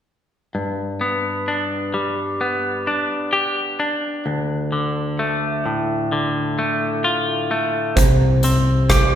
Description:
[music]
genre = post-rock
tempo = 65 BPM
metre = 4/4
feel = straight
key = unclear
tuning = A4 = 442 Hz
[part]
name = semi-hollow electric guitar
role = arpeggios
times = 0.5-9.2 s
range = D2 to G4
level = -19 LUFS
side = left 1 dB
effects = none
[part]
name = felt-muted upright piano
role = arpeggios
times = 8.0-9.2 s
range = C5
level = -24 LUFS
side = right 10 dB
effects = none
[part]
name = growling picked electric bass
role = bass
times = 8.0-9.2 s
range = C2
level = -18 LUFS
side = equal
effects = overdrive
[part]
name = huge arena drum kit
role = drums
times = 8.0-9.1 s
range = hi-hat, kick drum, rim click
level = -18 LUFS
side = right 1 dB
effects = none
[sound]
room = wet recital hall reverb, RT60 1.6 s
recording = recorded in a church or concert hall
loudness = -18 LUFS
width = side -9 dB against mid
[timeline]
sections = 0.5-9.2 A section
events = none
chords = 0.5 G; 4.3 Dm; 8.0 C5

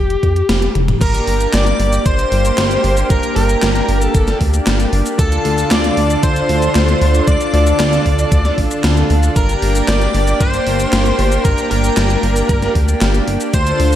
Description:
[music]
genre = synthwave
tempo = 115 BPM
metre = 4/4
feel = straight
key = G minor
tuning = A4 = 439 Hz
[part]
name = bluesy overdriven lead guitar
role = melody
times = 0.0-14.0 s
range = G4 to D5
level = -20 LUFS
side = left 1 dB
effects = distortion, tape echo
[part]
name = chorused synth bass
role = bass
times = 0.0-14.0 s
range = F1 to F2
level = -16 LUFS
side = equal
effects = sidechain pumping
[part]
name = gated 80s digital drum machine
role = drums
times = 0.1-14.0 s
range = crash cymbal, handclaps, hi-hat, shaker, snare drum, toms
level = -21 LUFS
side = left 1 dB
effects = gated reverb, gated reverb snare, overdrive
[part]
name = electronic kick drum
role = drums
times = 0.2-13.6 s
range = none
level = -17 LUFS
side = equal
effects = overdrive
[part]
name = airy dreamy lead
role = second line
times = 1.0-14.0 s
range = A5 to D6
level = -26 LUFS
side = equal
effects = chorus, tape echo
[part]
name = lush unison pad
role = sustained chords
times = 1.0-14.0 s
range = D3 to A4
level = -19 LUFS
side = equal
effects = chorus, sidechain pumping
[sound]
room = moderate lush hall reverb, RT60 2.4 s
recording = dreamy mix soaked in reverb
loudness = -12 LUFS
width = side -11 dB against mid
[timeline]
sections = 0.0-1.0 A section; 1.0-14.0 B section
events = drum fill 0.8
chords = 0.0 Fsus2; 1.0 Gm; 5.2 Dm; 9.4 Gm

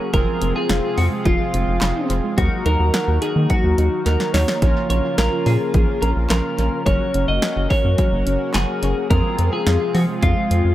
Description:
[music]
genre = synth-pop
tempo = 107 BPM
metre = 4/4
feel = straight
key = unclear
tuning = A4 = 439 Hz
[part]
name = twelve-string electric guitar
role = melody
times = 0.0-10.7 s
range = F4 to Eb5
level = -23 LUFS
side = equal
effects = dub echo
[part]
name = analog synth brass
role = accompaniment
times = 0.0-10.7 s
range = C4 to Bb4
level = -28 LUFS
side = left 2 dB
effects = chorus, dub echo
[part]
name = lush unison pad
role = sustained chords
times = 0.0-10.7 s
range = C3 to Gb4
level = -28 LUFS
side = equal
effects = chorus
[part]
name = soft round pluck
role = arpeggios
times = 0.0-10.6 s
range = F3 to Gb5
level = -28 LUFS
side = right 1 dB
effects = chorus, dub echo
[part]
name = rubbery square bass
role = bass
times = 0.1-10.7 s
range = F1 to F3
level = -19 LUFS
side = equal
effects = none
[part]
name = punchy analog drum machine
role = drums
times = 0.1-10.6 s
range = handclaps, hi-hat, kick drum, snare drum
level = -21 LUFS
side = equal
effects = dub echo
[sound]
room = light reverb, digital ambience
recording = echo-heavy mix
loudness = -16 LUFS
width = side -14 dB against mid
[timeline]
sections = 0.0-10.7 A section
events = drum fill 4.1-4.6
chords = 0.1 Fm; 2.4 Ebm; 4.6 Bbm; 6.9 Gb; 9.1 Fm

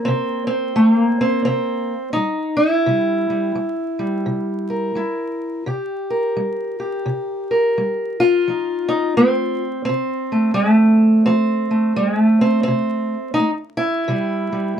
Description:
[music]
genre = acoustic country blues, solo or duo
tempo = 86 BPM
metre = 4/4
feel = swing 61% on 8ths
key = C mixolydian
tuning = A4 = 441 Hz
[part]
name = fingerpicked steel-string acoustic guitar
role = solo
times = 0.0-14.8 s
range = C3 to Bb4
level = -16 LUFS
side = equal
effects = none
[sound]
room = light reverb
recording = close, detailed microphones, vinyl crackle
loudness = -16 LUFS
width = side -8 dB against mid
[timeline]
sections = 0.0-14.8 A section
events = none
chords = 0.0 C7; 8.5 F7; 14.1 C

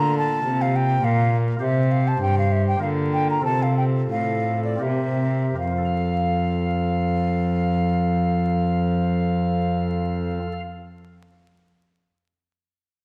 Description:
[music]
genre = classical, baroque-style sonata movement with continuo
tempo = 77-106 BPM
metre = 3/4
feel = rubato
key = F major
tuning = A4 = 440 Hz
[part]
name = bright baroque flute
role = melody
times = 0.0-10.3 s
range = D5 to Bb5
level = -28 LUFS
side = equal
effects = none
[part]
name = pipe organ, flutes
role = accompaniment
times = 0.0-10.6 s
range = G2 to F5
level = -27 LUFS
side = equal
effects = none
[part]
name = warm cello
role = bass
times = 0.0-10.3 s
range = F2 to D3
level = -26 LUFS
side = equal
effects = none
[sound]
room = wet recital hall reverb, RT60 1.6 s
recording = vinyl crackle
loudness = -22 LUFS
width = mono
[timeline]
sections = 0.0-5.6 A section; 5.6-10.2 B section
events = slowing down 0.7-5.6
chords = 0.0 Bb; 1.6 C5; 2.8 Bb/D; 3.4 F/C; 4.8 C7; 5.6 F

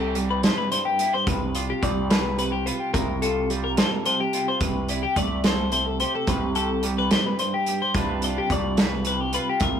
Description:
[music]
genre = math rock and midwest emo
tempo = 72 BPM (dotted quarters)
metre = 6/8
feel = straight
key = unclear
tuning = A4 = 440 Hz
[part]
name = clean electric guitar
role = accompaniment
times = 0.0-9.8 s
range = G2 to B4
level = -28 LUFS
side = right 5 dB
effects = harmonic tremolo
[part]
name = twelve-string electric guitar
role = arpeggios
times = 0.0-9.8 s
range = G4 to D5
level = -25 LUFS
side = left 5 dB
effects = none
[part]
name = growling picked electric bass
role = bass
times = 0.0-9.8 s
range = C2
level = -29 LUFS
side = equal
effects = overdrive
[part]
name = loose indie drum kit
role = drums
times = 0.2-9.7 s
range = hi-hat, kick drum, snare drum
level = -25 LUFS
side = right 1 dB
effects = none
[sound]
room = light reverb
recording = rough rehearsal-room recording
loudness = -21 LUFS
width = side -8 dB against mid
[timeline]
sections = 0.0-9.8 A section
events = none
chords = 0.0 Cmaj7(no3); 1.3 G7/C; 2.9 Gm11/C; 4.6 Cmaj7sus2; 6.3 C5; 7.9 G7/C

